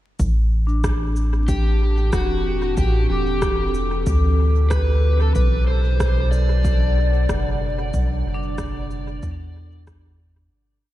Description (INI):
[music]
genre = ambient dub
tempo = 93 BPM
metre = 4/4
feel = swing 58% on 16ths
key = A dorian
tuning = A4 = 441 Hz
[part]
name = warbly tape-like pad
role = sustained chords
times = 1.4-10.5 s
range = A2 to A5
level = -29 LUFS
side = right 1 dB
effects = chorus, built-in reverb
[part]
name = soft dub sub bass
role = bass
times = 0.2-10.5 s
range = E1 to E2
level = -19 LUFS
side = equal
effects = none
[part]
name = electronic cabasa and rim click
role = drums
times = 0.2-10.0 s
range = none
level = -33 LUFS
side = equal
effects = dub echo
[part]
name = electronic kick drum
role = drums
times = 0.2-10.0 s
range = none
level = -25 LUFS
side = equal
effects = overdrive
[part]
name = vibraphone with hard mallets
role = arpeggios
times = 0.7-10.9 s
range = D4 to D6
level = -32 LUFS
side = left 3 dB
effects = low-pass filter, analog delay
[part]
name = overdriven slide guitar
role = melody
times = 1.5-9.8 s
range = F#4 to D5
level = -26 LUFS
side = left 1 dB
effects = lush chorus, dub echo
[sound]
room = light reverb, digital ambience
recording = vinyl crackle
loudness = -17 LUFS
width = side -14 dB against mid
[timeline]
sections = 0.2-10.5 groove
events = filter sweep on vibraphone 0.2-10.5; fade-out 7.1-10.5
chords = 0.2 Am7; 5.4 Bm